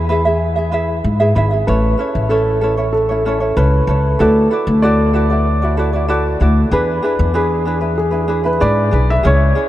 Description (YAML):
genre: acoustic pop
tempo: 95 BPM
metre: 4/4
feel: straight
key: A major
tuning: A4 = 440 Hz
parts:
  - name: ukulele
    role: accompaniment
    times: 0.0-9.7 s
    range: C#4 to E5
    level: -18 LUFS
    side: right 1 dB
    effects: none
  - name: upright bass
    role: bass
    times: 0.0-9.5 s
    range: G#1 to G#2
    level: -16 LUFS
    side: equal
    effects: none
  - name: dark upright piano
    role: melody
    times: 1.7-9.7 s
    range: G#4 to E5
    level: -19 LUFS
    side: equal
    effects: analog delay
room: moderate huge ambient reverb, RT60 8.6 s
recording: dreamy mix soaked in reverb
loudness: -13 LUFS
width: side -14 dB against mid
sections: 0.0-1.7 A section; 1.7-9.7 B section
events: none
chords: 0.0 E; 1.7 A; 4.2 Dadd9; 6.7 E7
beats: 0.40 1.03 | 1.67 2.30 2.93 3.56 | 4.19 4.83 5.46 6.09 | 6.72 7.35 7.98 8.62 | 9.25